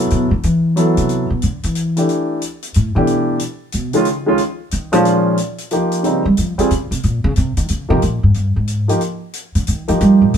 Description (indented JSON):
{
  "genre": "modal jazz",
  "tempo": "182 BPM",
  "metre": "3/4",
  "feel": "swing 64% on 8ths",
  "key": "Bb dorian from 5.0 s",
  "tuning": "A4 = 441 Hz",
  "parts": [
    { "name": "warm grand piano", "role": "accompaniment", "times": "0.0-10.3 s", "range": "Bb2 to A4", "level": "-16 LUFS", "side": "equal", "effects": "none" },
    { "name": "upright bass", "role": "bass", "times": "0.0-10.4 s", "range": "G2 to G3", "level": "-15 LUFS", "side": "equal", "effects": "none" },
    { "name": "hi-hat", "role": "drums", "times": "0.1-10.4 s", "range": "none", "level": "-29 LUFS", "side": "left 3 dB", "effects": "none" }
  ],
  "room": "moderate studio reverb, RT60 0.8 s",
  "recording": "band playing live in one room",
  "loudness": "-14 LUFS",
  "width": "side -8 dB against mid",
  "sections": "0.0-5.0 A section; 5.0-10.4 A section",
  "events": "upright bass solo 0.0-10.4",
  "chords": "0.0 Dsus4; 4.1 Bbmadd11; 5.0 Bbm9; 9.0 Cm7 (rootless)",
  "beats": "| 0.10 0.43 0.76 | 1.09 1.42 1.75 | 2.08 2.41 2.74 | 3.07 3.40 3.73 | 4.06 4.39 4.72 | 5.05 5.38 5.71 | 6.04 6.37 6.70 | 7.03 7.36 7.69 | 8.02 8.35 8.68 | 9.01 9.34 9.67 | 10.00 10.33"
}